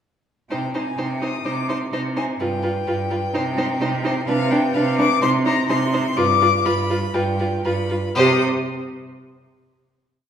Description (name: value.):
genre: quick classical-period movement for string quartet.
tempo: 126 BPM.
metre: 4/4.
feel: uneven beats.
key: C minor.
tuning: A4 = 439 Hz.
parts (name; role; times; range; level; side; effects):
rich violin; melody; 0.5-8.4 s; F5 to Eb6; -24 LUFS; left 7 dB; none.
warm violin; second line; 0.5-8.4 s; B4 to C5; -27 LUFS; right 1 dB; none.
rich viola; accompaniment; 0.5-8.4 s; D4 to G4; -24 LUFS; right 1 dB; none.
clear cello; bass; 0.5-8.4 s; G2 to C3; -23 LUFS; right 3 dB; none.
room: wet recital hall reverb, RT60 1.7 s.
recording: recorded in a church or concert hall.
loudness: -18 LUFS.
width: side -8 dB against mid.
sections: 0.5-8.2 A section; 8.2-10.2 final chord.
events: none.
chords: 0.5 Cm; 2.4 G7; 3.3 Cm; 4.3 Gadd11/C; 5.2 Cm; 6.2 G7; 8.2 C5.